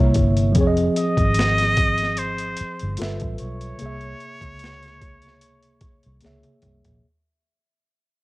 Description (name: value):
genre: R&B, neo-soul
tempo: 74 BPM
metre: 4/4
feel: swing 55% on 16ths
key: unclear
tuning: A4 = 440 Hz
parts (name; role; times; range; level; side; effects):
- trumpet with straight mute; melody; 0.0-6.2 s; Bb4 to Eb5; -25 LUFS; equal; cassette tape
- tine electric piano; accompaniment; 0.0-7.1 s; C3 to E5; -24 LUFS; equal; overdrive, fast stereo tremolo, cassette tape
- vintage muted fingered electric bass; bass; 0.0-7.0 s; F1 to Db2; -24 LUFS; equal; transformer saturation
- boom bap sampler-style drum kit; drums; 0.1-7.0 s; hi-hat, kick drum, snare drum, toms; -23 LUFS; equal; overdrive, cassette tape
room: digital ambience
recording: home recording on cassette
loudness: -18 LUFS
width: side -20 dB against mid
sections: 0.0-7.0 A section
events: fade-out 0.0-7.0; tine electric piano fill 0.0-0.6; drum fill 6.2-7.0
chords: 0.0 C7b9; 0.6 Fm7; 3.0 G13; 3.8 C7b9b13